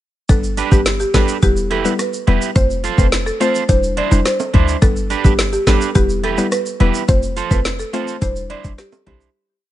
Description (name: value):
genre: dancehall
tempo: 106 BPM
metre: 4/4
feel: straight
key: C major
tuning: A4 = 439 Hz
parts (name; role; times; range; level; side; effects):
- buzzing marimba with medium hard mallets; melody; 0.3-9.2 s; G4 to D5; -22 LUFS; equal; none
- mallet-like synth pluck; accompaniment; 0.3-9.2 s; G3 to C5; -22 LUFS; left 3 dB; chorus
- short 808-style bass; bass; 0.3-9.3 s; E1 to D2; -18 LUFS; equal; none
- island pop drum kit; drums; 0.3-9.2 s; hi-hat, kick drum, rim click, snare drum; -17 LUFS; equal; none
- tube shaker and timbales; percussion; 0.3-9.3 s; none; -31 LUFS; right 4 dB; none
- electric guitar at the edge of break-up; arpeggios; 0.6-9.3 s; D4 to C5; -23 LUFS; right 9 dB; none
room: digital ambience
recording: nothing above 10.5 kHz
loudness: -14 LUFS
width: side -13 dB against mid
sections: 0.3-9.3 chorus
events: fade-out 7.1-9.3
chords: 0.3 G; 1.4 Em; 2.6 F; 3.7 Cadd9/E; 4.8 G; 6.0 Em; 7.1 F; 8.2 Cadd9/E